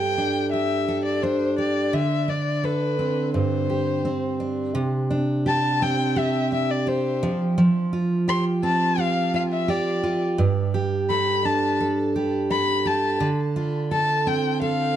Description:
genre	pop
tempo	85 BPM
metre	4/4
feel	straight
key	C major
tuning	A4 = 440 Hz
part	dark violin	melody	0.0-15.0 s	B4 to C6	-25 LUFS	left 3 dB	digital delay
part	picked steel-string acoustic guitar	accompaniment	0.0-15.0 s	G2 to A4	-22 LUFS	right 2 dB	none
room	wet studio reverb, RT60 0.8 s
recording	dark, warm production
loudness	-20 LUFS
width	side -10 dB against mid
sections	0.0-4.8 A section; 4.8-15.0 B section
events	none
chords	0.0 Gsus2; 1.9 D5; 3.3 Gsus4; 4.8 Csus2; 7.2 Fsus2; 10.4 Gsus2; 13.2 Dm7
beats	0.53 1.23 | 1.94 2.64 3.35 4.05 | 4.75 5.46 6.16 6.87 | 7.57 8.28 8.98 9.68 | 10.39 11.09 11.80 12.50 | 13.21 13.91 14.62

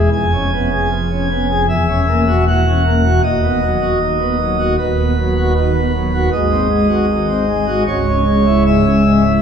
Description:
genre	classical, chorale-style piece for pipe organ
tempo	78 BPM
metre	4/4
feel	rubato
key	B major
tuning	A4 = 438 Hz
part	pipe organ, principal chorus	solo	0.0-9.4 s	C#1 to G#5	-12 LUFS	equal	none
room	wet church reverb, RT60 2.9 s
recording	heard from further back in the room, small room ambience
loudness	-13 LUFS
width	side -7 dB against mid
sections	0.0-9.4 A section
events	none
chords	0.1 C#7/E#; 1.7 F#7/E; 3.2 B/D#; 6.3 G#7; 7.9 C#m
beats	| 0.12 0.91 1.69 2.46 | 3.23 4.00 4.78 5.55 | 6.32 7.08 7.87 8.66

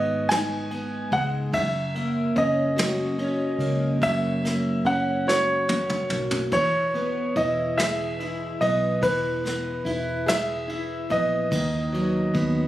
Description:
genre	six-eight pop ballad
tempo	48 BPM (dotted quarters)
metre	6/8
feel	straight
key	unclear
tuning	A4 = 441 Hz
part	clear grand piano	melody	0.0-12.7 s	B4 to G#5	-25 LUFS	right 1 dB	tape echo
part	fingerpicked plugged-in steel-string acoustic guitar	accompaniment	0.0-12.7 s	F#2 to G#4	-27 LUFS	equal	double-tracked left and right
part	vintage muted fingered electric bass	bass	0.0-12.7 s	E1 to D#2	-31 LUFS	equal	none
part	jazz brush drum kit	drums	0.3-12.5 s	kick drum, ride cymbal, snare drum, toms	-31 LUFS	equal	none
room	light reverb, small room ambience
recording	recorded on a phone in the room, studio reverb, compression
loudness	-22 LUFS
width	side -14 dB against mid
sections	0.0-12.7 A section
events	drum fill 5.3-6.5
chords	0.0 G#m; 1.5 F#; 6.5 E; 11.5 B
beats	0.29 | 1.53 2.77 | 4.02 5.27 | 6.53 7.78 | 9.03 10.27 | 11.52

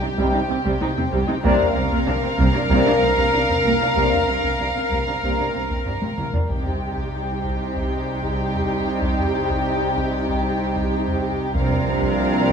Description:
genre	cinematic, suspense film score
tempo	95 BPM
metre	4/4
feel	straight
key	C minor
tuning	A4 = 440 Hz
part	dark studio violin section	melody	0.0-12.5 s	F5 to G5	-27 LUFS	left 1 dB	none
part	warm symphonic violin section	second line	0.0-12.5 s	G4 to Bb4	-26 LUFS	left 2 dB	none
part	dark studio viola section	accompaniment	0.0-12.5 s	G3 to Eb4	-28 LUFS	right 2 dB	none
part	warm symphonic cello section	bass	0.0-12.5 s	C3	-27 LUFS	right 2 dB	none
part	clear trombone section	sustained chords	0.2-12.5 s	C3 to Bb3	-29 LUFS	right 4 dB	none
part	mellow French horn section	sustained chords	0.2-12.5 s	Bb3 to Eb4	-28 LUFS	left 4 dB	none
part	dark studio double bass section	bass	0.2-12.5 s	C2	-26 LUFS	right 2 dB	none
part	solo taiko drums	drums	0.2-12.5 s	none	-27 LUFS	equal	none
room	wet concert hall reverb, RT60 2.0 s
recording	none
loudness	-18 LUFS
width	side -6 dB against mid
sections	0.0-12.5 A section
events	drum fill 5.9-6.5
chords	0.0 Cm; 1.4 Bbadd9/C; 6.5 Cm; 11.5 Bbadd9/C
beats	0.18 0.81 | 1.44 2.07 2.71 3.34 | 3.97 4.60 5.23 5.86 | 6.49 7.13 7.76 8.39 | 9.02 9.65 10.28 10.91 | 11.55 12.18

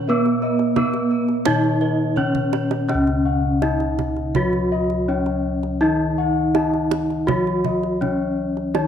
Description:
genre	Javanese gamelan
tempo	82 BPM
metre	4/4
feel	straight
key	unclear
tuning	A4 = 438 Hz
part	gamelan-type bronze metallophone	melody	0.0-8.9 s	Cb4-45c to Gb4-35c	-21 LUFS	equal	none
part	gamelan-type bronze metallophone	accompaniment	0.0-8.9 s	Db3 to Cb4-45c	-25 LUFS	right 1 dB	none
part	gamelan-type bronze metallophone	arpeggios	0.0-2.9 s	Cb5-45c to Eb5+30c	-31 LUFS	right 11 dB	none
part	gamelan-type bossed gongs	bass	0.0-8.9 s	Db2 to Cb5-45c	-26 LUFS	left 1 dB	none
part	gamelan-type bossed gongs	arpeggios	0.1-8.9 s	Cb5-45c to Gb5-35c	-27 LUFS	left 8 dB	none
part	kendang	percussion	0.3-8.9 s	none	-27 LUFS	right 9 dB	none
room	moderate echo chamber reverb, RT60 1.5 s, small room reverb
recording	1960s-style stereo with parts hard left and right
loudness	-18 LUFS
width	side -8 dB against mid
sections	0.0-2.9 A section; 2.9-8.9 B section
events	drum fill 2.2-2.9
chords	none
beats	| 0.09 0.77 1.46 2.17 | 2.89 3.62 4.36 5.09 | 5.82 6.55 7.28 8.02 | 8.75

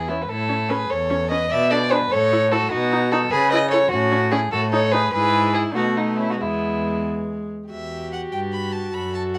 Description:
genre	quick classical-period movement for string quartet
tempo	98 BPM (dotted quarters)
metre	6/8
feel	rubato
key	E major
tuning	A4 = 440 Hz
part	warm violin	melody	0.0-9.4 s	B3 to B5	-30 LUFS	equal	none
part	dark violin	second line	0.0-9.4 s	D#4 to E5	-24 LUFS	equal	none
part	warm cello	bass	0.0-9.4 s	E2 to C#3	-28 LUFS	equal	none
part	warm viola	accompaniment	0.1-9.4 s	G#3 to F#4	-28 LUFS	equal	none
room	light reverb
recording	none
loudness	-21 LUFS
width	mono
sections	0.0-7.7 A section; 7.7-9.4 A section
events	none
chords	0.3 A; 1.5 Bmadd11; 2.1 A; 2.7 B; 3.3 C#m; 3.9 F#m/A; 4.5 Amaj9#11; 5.1 E/G#; 5.8 B7; 6.4 E; 7.7 Em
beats	| 0.28 0.90 | 1.51 2.12 | 2.72 3.32 | 3.92 4.52 | 5.13 5.76 | 6.41 7.07 | 7.71 8.33 | 8.95

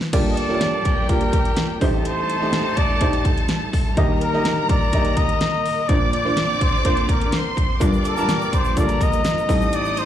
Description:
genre	piano-driven pop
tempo	125 BPM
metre	4/4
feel	straight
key	G minor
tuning	A4 = 437 Hz
part	pop drum kit	drums	0.0-10.1 s	crash cymbal, hi-hat, kick drum, snare drum	-21 LUFS	equal	none
part	warm symphonic violin section	second line	0.1-10.1 s	G4 to Eb6	-26 LUFS	left 1 dB	slapback echo, tape echo
part	dark upright piano	accompaniment	0.1-10.1 s	G1 to A5	-24 LUFS	right 1 dB	slapback echo
part	dark studio string section	sustained chords	0.1-10.1 s	Eb2 to Eb4	-30 LUFS	right 1 dB	none
part	breathy flugelhorn	melody	0.3-10.1 s	Bb4 to Eb5	-24 LUFS	left 1 dB	slapback echo
part	tube shaker	percussion	7.8-10.1 s	none	-44 LUFS	left 5 dB	none
room	light reverb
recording	live gig heard through the venue's PA, club reverb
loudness	-17 LUFS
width	side -10 dB against mid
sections	0.1-10.1 A section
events	none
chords	0.1 Gm7; 1.8 Am7b5; 4.0 Eb; 5.9 Bbadd9; 7.8 Gm7; 9.5 Am7b5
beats	| 0.13 0.61 1.09 1.57 | 2.05 2.53 3.01 3.49 | 3.97 4.45 4.93 5.41 | 5.89 6.37 6.85 7.33 | 7.81 8.29 8.77 9.25 | 9.73

